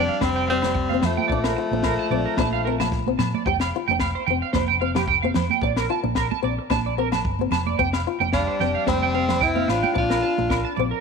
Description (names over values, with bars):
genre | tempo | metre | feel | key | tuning
highlife guitar band | 111 BPM | 4/4 | swing 54% on 16ths | F major | A4 = 435 Hz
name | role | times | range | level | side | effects
clear tenor saxophone | melody | 0.0-3.2, 8.3-10.7 s | A3 to F4 | -25 LUFS | equal | none
bright alto saxophone | second line | 0.0-3.2, 8.4-10.8 s | F3 to D4 | -30 LUFS | left 11 dB | none
fingerpicked acoustic archtop guitar | accompaniment | 0.0-11.0 s | G3 to F4 | -29 LUFS | left 14 dB | none
electric guitar at the edge of break-up | arpeggios | 0.0-11.0 s | G4 to A5 | -25 LUFS | right 12 dB | analog chorus, slapback echo
hollow-body short-scale fingered electric bass | bass | 0.0-10.9 s | F1 to Bb2 | -28 LUFS | equal | none
compact cocktail drum kit | drums | 0.2-10.6 s | kick drum, snare drum | -29 LUFS | left 2 dB | none
agogo bells | percussion | 0.2-10.7 s | none | -32 LUFS | left 13 dB | none
congas | percussion | 0.2-10.9 s | none | -30 LUFS | right 14 dB | none
room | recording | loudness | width
light reverb, small room ambience | 1960s-style stereo with parts hard left and right | -20 LUFS | side -5 dB against mid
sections
0.0-11.0 A section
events
none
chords
0.0 Fsus2; 1.3 Bbmaj7; 3.5 Fsus2; 10.0 Bbmaj7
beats
0.22 0.76 | 1.30 1.84 2.38 2.92 | 3.46 4.00 4.55 5.09 | 5.63 6.17 6.71 7.25 | 7.79 8.34 8.88 9.42 | 9.96 10.50